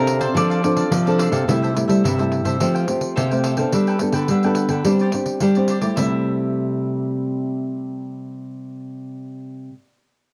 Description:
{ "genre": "samba and choro", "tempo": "107 BPM", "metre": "4/4", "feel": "straight", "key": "C major", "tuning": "A4 = 440 Hz", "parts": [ { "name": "mandolin", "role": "melody", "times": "0.0-1.2 s", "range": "Bb4 to D5", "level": "-27 LUFS", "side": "equal", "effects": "cassette tape" }, { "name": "cavaquinho", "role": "accompaniment", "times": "0.0-9.7 s", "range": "D4 to G5", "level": "-31 LUFS", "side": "equal", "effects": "cassette tape" }, { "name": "nylon-string guitar", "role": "accompaniment", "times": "0.0-9.8 s", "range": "G2 to A4", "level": "-25 LUFS", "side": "equal", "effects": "cassette tape" }, { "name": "nylon-string guitar", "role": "bass", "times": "0.0-9.7 s", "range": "C3 to G3", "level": "-24 LUFS", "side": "equal", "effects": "none" }, { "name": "pandeiro", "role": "percussion", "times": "0.1-6.1 s", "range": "none", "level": "-29 LUFS", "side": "equal", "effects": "none" } ], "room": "light reverb, small room ambience", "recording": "home recording on cassette", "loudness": "-20 LUFS", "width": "mono", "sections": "0.0-1.5 A section; 1.5-6.0 B section; 6.0-8.2 C section", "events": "none", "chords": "0.0 F6; 1.5 C6; 2.6 Fadd9; 3.7 Gadd9; 4.9 Csus2/G; 6.0 C6", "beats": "0.36 0.92 | 1.48 2.05 2.61 3.17 | 3.73 4.29 4.86 5.42 | 5.98 6.54 7.11 7.67" }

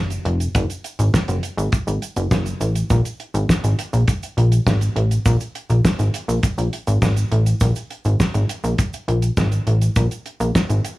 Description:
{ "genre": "early-eighties boogie funk", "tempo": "102 BPM", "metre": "4/4", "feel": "straight", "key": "unclear", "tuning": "A4 = 442 Hz", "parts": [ { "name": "plucky analog bass", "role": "bass", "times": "0.0-10.8 s", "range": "F1 to Bb1", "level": "-17 LUFS", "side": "equal", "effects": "none" }, { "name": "damped 70s drum kit", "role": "drums", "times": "0.1-11.0 s", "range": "hi-hat, kick drum, snare drum", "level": "-21 LUFS", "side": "equal", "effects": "none" }, { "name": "tube shaker", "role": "percussion", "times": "0.1-11.0 s", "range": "none", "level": "-37 LUFS", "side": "right 6 dB", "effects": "none" } ], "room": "small room ambience", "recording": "none", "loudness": "-17 LUFS", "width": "side -18 dB against mid", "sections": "0.0-11.0 A section", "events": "none", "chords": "none", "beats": "| 0.55 1.14 1.73 2.31 | 2.90 3.49 4.08 4.67 | 5.26 5.84 6.43 7.02 | 7.61 8.20 8.79 9.37 | 9.96 10.55" }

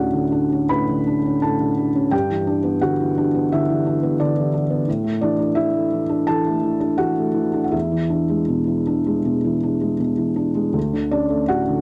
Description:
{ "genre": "neoclassical minimalist piano", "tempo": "76-89 BPM", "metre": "4/4", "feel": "rubato", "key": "D major", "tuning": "A4 = 440 Hz", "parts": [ { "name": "felt-muted upright piano", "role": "solo", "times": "0.0-11.8 s", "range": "D2 to B5", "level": "-20 LUFS", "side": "equal", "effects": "none" } ], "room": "little or no reverb", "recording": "dry, close 1970s-style studio recording", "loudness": "-20 LUFS", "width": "mono", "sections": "0.0-11.8 A section", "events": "none", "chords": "0.0 Dmaj7; 2.1 G6; 4.9 Asus4; 7.7 E7; 10.8 Dmaj7", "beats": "0.70 1.42 | 2.12 2.81 3.51 4.19 | 4.87 5.55 6.28 7.00 | 7.74 8.50 9.26 10.02 | 10.76 11.49" }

